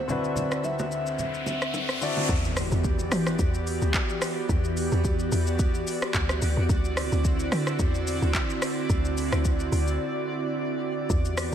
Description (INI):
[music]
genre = amapiano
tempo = 109 BPM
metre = 4/4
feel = swing 55% on 16ths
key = unclear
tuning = A4 = 440 Hz
[part]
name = hollow clarinet-like synth lead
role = melody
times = 0.0-2.0 s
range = C5 to E5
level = -33 LUFS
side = equal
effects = chorus, digital delay
[part]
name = warm grand piano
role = accompaniment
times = 0.0-2.3 s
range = D3 to D5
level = -31 LUFS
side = left 4 dB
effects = none
[part]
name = airy breathy pad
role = sustained chords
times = 0.0-11.5 s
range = D2 to F#5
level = -30 LUFS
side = right 1 dB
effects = chorus
[part]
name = afro-pop drum kit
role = drums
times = 0.1-11.5 s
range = handclaps, hi-hat, kick drum, rim click, shaker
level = -28 LUFS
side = equal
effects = none
[part]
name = congas and bongos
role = percussion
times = 0.1-2.3 s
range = none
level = -35 LUFS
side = right 2 dB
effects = none
[part]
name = riser and impact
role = sound effects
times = 0.8-4.5 s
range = none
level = -33 LUFS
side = equal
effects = none
[part]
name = deep log drum bass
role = bass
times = 2.3-11.5 s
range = D2 to E3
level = -26 LUFS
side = equal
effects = none
[sound]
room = light reverb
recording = none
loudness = -24 LUFS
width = side -9 dB against mid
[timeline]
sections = 0.0-2.3 A section; 2.3-11.5 B section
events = riser 0.8-2.3; drop 2.3-11.5; impact 2.3-4.5; break 10.0-11.1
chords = 0.0 D9; 2.3 Em9; 6.7 D9